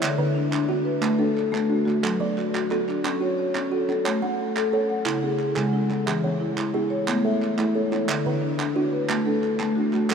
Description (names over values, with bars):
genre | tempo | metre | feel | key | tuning
southern african traditional, mbira-style interlocking cycle | 119 BPM (dotted quarters) | 12/8 | straight | unclear | A4 = 438 Hz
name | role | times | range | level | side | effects
kalimba | arpeggios | 0.0-10.1 s | C#3 to F#5 | -26 LUFS | right 4 dB | none
marimba with soft mallets | arpeggios | 0.0-10.1 s | C#3 to F#5 | -24 LUFS | left 3 dB | none
group handclap | percussion | 0.0-10.1 s | none | -32 LUFS | right 6 dB | none
room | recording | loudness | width
wet huge ambient reverb, RT60 7.7 s | in a vast, echoing space | -21 LUFS | side -6 dB against mid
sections
0.0-10.1 A section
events
none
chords
0.0 D; 2.0 F#m; 4.0 A; 5.1 C#m; 6.1 E; 7.1 A; 8.1 D